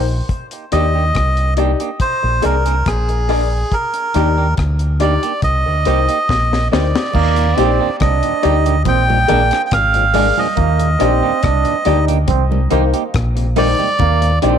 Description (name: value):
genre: roots reggae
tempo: 70 BPM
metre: 4/4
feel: straight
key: Eb major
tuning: A4 = 440 Hz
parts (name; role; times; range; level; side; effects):
- dark upright piano; stabs; 0.0-14.6 s; Eb4 to D5; -21 LUFS; left 13 dB; none
- deep dub fingered electric bass; bass; 0.0-14.6 s; Ab1 to Eb2; -16 LUFS; equal; tube saturation
- deep reggae drum kit; drums; 0.3-14.6 s; crash cymbal, hi-hat, kick drum, rim click, snare drum; -22 LUFS; left 2 dB; none
- melodica; melody; 0.7-14.4 s; Ab4 to G5; -18 LUFS; right 2 dB; tape echo
- semi-hollow electric guitar; accompaniment; 0.7-14.6 s; Bb3 to Ab4; -25 LUFS; right 13 dB; tape echo
- warm trombone; second line; 7.1-14.6 s; Bb3 to Eb4; -20 LUFS; right 13 dB; tape echo
- congas; percussion; 7.1-14.2 s; none; -25 LUFS; right 11 dB; none
- tonewheel organ; accompaniment; 7.4-14.5 s; Eb2 to Eb4; -26 LUFS; left 11 dB; overdrive, stopped rotary speaker, tape echo
room: light reverb, small room ambience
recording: 1960s-style stereo with parts hard left and right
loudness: -13 LUFS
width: side -8 dB against mid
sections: 0.0-7.1 A section; 7.1-14.6 B section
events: drum fill 6.3-7.1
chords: 0.3 Ebmaj7; 2.0 Bb7; 3.7 Ebmaj7; 5.4 Cm7; 8.9 Bb7; 10.6 Ebmaj7; 12.3 Cm7; 14.0 Ebmaj7